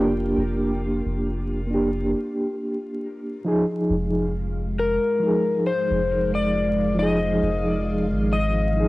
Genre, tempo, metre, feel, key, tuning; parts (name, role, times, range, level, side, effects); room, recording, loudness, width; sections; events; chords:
trip hop; 68 BPM; 4/4; swing 55% on 16ths; A4 = 441 Hz
electric slide guitar; melody; 0.0-8.9 s; F4 to Eb5; -26 LUFS; left 3 dB; dub echo
mellow reed electric piano; accompaniment; 0.0-8.9 s; F3 to Ab4; -24 LUFS; right 1 dB; fast tremolo, cassette tape, tape echo
string machine, cellos; sustained chords; 0.0-8.9 s; Ab3 to D6; -29 LUFS; right 2 dB; phaser, ensemble chorus, cassette tape
soft dub sub bass; bass; 0.0-8.9 s; F1 to Ab1; -27 LUFS; equal
light reverb; home recording on cassette, vinyl crackle; -21 LUFS; side -18 dB against mid
0.0-3.9 A section; 3.9-8.9 B section
0.0 Bb6/F